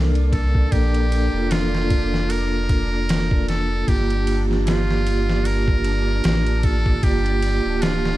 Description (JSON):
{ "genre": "trip hop", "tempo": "76 BPM", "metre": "4/4", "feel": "swing 56% on 16ths", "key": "unclear", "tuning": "A4 = 440 Hz", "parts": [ { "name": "vibraphone with medium mallets", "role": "accompaniment", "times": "0.0-8.2 s", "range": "Bb3 to A4", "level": "-24 LUFS", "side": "right 2 dB", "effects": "tremolo, vintage 12-bit sampler grit, tape echo" }, { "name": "warm sub bass", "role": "bass", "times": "0.0-8.2 s", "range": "D1 to C2", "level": "-21 LUFS", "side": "equal", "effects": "none" }, { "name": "backwards swelling texture", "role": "texture", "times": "0.0-8.2 s", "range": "D4 to D5", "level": "-34 LUFS", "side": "left 2 dB", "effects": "built-in reverb" }, { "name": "trip hop sampler-style drum kit", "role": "drums", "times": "0.2-8.2 s", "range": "kick drum, ride cymbal, snare drum", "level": "-23 LUFS", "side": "equal", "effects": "none" }, { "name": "trumpet with metal mute", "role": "melody", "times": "0.3-8.2 s", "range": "F4 to Bb4", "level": "-27 LUFS", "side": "equal", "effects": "vintage 12-bit sampler grit, tape echo" } ], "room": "digital ambience", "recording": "dark, warm production", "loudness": "-17 LUFS", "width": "side -16 dB against mid", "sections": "0.0-8.2 A section", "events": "none", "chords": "0.0 Bbmaj7; 3.9 Gm7", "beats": "| 0.72 1.51 2.30 3.09 | 3.88 4.67 5.46 6.24 | 7.03 7.82" }